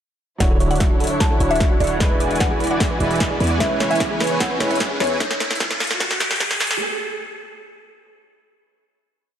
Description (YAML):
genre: future bass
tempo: 150 BPM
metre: 4/4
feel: half-time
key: unclear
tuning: A4 = 439 Hz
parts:
  - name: mallet-like synth pluck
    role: melody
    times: 0.4-5.2 s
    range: C#5 to A5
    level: -26 LUFS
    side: left 1 dB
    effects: chorus, phaser, sidechain pumping, digital delay
  - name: clear baby grand piano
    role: accompaniment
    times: 0.4-5.2 s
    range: F#3 to C#5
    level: -27 LUFS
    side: right 2 dB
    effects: sidechain pumping, tape echo
  - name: dark chamber string section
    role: sustained chords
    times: 0.4-5.2 s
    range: C#3 to C#5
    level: -31 LUFS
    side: left 1 dB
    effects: none
  - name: thumb-piano-like synth pluck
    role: arpeggios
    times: 0.4-5.1 s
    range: F#4 to G#5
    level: -29 LUFS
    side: right 2 dB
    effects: chorus, sidechain pumping, tape echo
  - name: supersaw chords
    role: riff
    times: 0.4-5.2 s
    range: D3 to G#5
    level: -24 LUFS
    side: right 1 dB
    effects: ensemble chorus, vintage 12-bit sampler grit, sidechain pumping, low-pass filter
  - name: warm 808-style bass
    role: bass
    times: 0.4-5.2 s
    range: D1 to E2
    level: -25 LUFS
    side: equal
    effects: sidechain pumping
  - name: electronic kick drum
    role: drums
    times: 0.4-6.5 s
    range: none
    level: -21 LUFS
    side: equal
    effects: none
  - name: trap drum kit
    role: drums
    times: 0.4-6.8 s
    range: hi-hat, snare drum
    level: -24 LUFS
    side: equal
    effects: overdrive, high-pass filter on snare, high-pass filter on hats
  - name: riser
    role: sound effects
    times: 2.6-6.8 s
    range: none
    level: -27 LUFS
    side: equal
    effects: none
room: moderate lush hall reverb, RT60 1.9 s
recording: dark, warm production, high-pass filter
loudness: -17 LUFS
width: side -9 dB against mid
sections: 0.4-6.8 build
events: build-up 0.4-6.8; drum fill 0.4-6.8; filter sweep on supersaw synth 0.4-5.2; filter sweep 0.4-6.8; riser 2.6-6.8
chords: 0.4 Dmaj9; 2.0 E7; 3.6 C#m7/E; 5.2 N.C.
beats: | 0.40 0.80 1.20 1.60 | 2.00 2.40 2.80 3.20 | 3.60 4.00 4.40 4.80 | 5.20 5.60 6.00 6.40